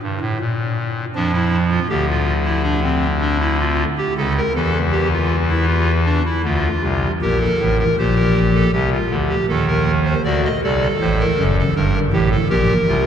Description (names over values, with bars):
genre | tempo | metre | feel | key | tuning
classical, baroque-style 3-part fugue for pipe organ | 79 BPM | 4/4 | straight | G minor | A4 = 440 Hz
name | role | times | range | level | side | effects
pipe organ, clarinet reed | solo | 0.0-13.1 s | F#1 to Eb5 | -15 LUFS | equal | none
room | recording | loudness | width
wet cathedral reverb, RT60 7.1 s | dark, warm production | -16 LUFS | side -8 dB against mid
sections
0.0-7.2 A section; 7.2-13.1 B section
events
none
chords
0.0 N.C.; 1.2 Dm/F; 2.6 Dm7; 4.2 A/C#; 5.7 Dm; 7.2 Gm; 8.7 Am7b5/C (rootless); 10.3 D7; 11.8 Gm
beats
0.41 | 1.16 1.90 2.65 3.40 | 4.17 4.92 5.68 6.45 | 7.22 7.98 8.74 9.50 | 10.26 11.01 11.76 12.51